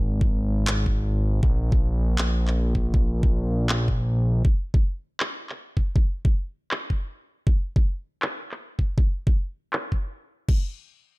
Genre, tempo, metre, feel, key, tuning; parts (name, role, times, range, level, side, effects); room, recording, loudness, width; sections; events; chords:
future bass; 159 BPM; 4/4; swing 55% on 16ths, half-time; A4 = 439 Hz
fat analog bass; bass; 0.0-4.4 s; Ab1 to Bb1; -22 LUFS; equal; sidechain pumping
electronic kick drum; drums; 0.2-10.6 s; -21 LUFS; equal
pop drum kit; drums; 0.7-10.6 s; crash cymbal, handclaps; -29 LUFS; equal; low-pass filter on hats, low-pass filter on snare, low-pass filter on cymbals
little or no reverb; dark, warm production; -22 LUFS; side -23 dB against mid
0.0-10.5 A section
filter sweep on drum 0.0-10.5